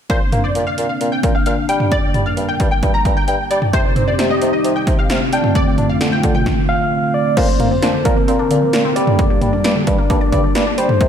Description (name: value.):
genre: synth-pop.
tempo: 132 BPM.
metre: 4/4.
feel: straight.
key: Bb major.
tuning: A4 = 440 Hz.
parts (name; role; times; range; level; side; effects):
wide unison pluck; second line; 0.1-6.4 s; C5 to Bb5; -21 LUFS; left 1 dB; ensemble chorus, tape echo.
chorused pulse-width pad; sustained chords; 0.1-11.1 s; C3 to G4; -20 LUFS; equal; none.
mellow bassoon; bass; 0.1-11.1 s; G2 to D4; -21 LUFS; equal; none.
punchy analog drum machine; drums; 0.1-11.1 s; crash cymbal, hi-hat, kick drum, snare drum, toms; -17 LUFS; equal; overdrive.
soft struck synth lead; melody; 6.7-11.1 s; Bb4 to F5; -19 LUFS; equal; chorus, tape echo.
resonant blip pluck; arpeggios; 7.4-11.1 s; D3 to D5; -22 LUFS; left 1 dB; phaser, tape echo.
room: moderate lush hall reverb, RT60 1.9 s.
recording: dreamy mix soaked in reverb.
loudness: -14 LUFS.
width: side -8 dB against mid.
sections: 0.1-7.4 A section; 7.4-11.1 B section.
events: none.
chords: 0.1 Bbadd9; 1.7 Gm; 3.7 Cm; 5.3 Dm7; 7.4 Bbadd9; 9.0 Gm.